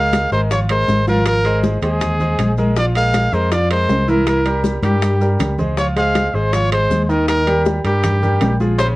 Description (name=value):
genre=latin, salsa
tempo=159 BPM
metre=4/4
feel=straight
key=unclear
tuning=A4 = 444 Hz
part: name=clear trumpet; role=melody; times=0.0-8.9 s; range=G4 to F5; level=-19 LUFS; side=equal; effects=none
part: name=bright grand piano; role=accompaniment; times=0.0-8.9 s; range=Db3 to F5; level=-20 LUFS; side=right 1 dB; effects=none
part: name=fingered electric bass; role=bass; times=0.0-9.0 s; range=Ab1 to G2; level=-18 LUFS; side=equal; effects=none
part: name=bongos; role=percussion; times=0.1-9.0 s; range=none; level=-26 LUFS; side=left 5 dB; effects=none
part: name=congas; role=percussion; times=0.1-9.0 s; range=none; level=-24 LUFS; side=left 1 dB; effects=none
part: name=maracas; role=percussion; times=0.1-9.0 s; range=none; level=-40 LUFS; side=left 4 dB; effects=none
part: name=timbales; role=percussion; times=0.1-8.6 s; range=none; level=-27 LUFS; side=right 5 dB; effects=none
room=moderate studio ambience, RT60 0.5 s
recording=worn, warbling old tape, cassette tape, warbly pitch drift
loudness=-14 LUFS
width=side -19 dB against mid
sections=0.0-9.0 A section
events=drum fill 4.8-5.8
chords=0.0 Db6; 1.3 Ab69; 2.8 Bb5; 4.3 C7b9; 5.8 Dbmaj7; 7.3 Ebadd9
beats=0.13 0.51 0.88 | 1.26 1.64 2.01 2.39 | 2.77 3.14 3.52 3.90 | 4.27 4.65 5.03 5.40 | 5.78 6.16 6.53 6.91 | 7.29 7.66 8.04 8.41 | 8.79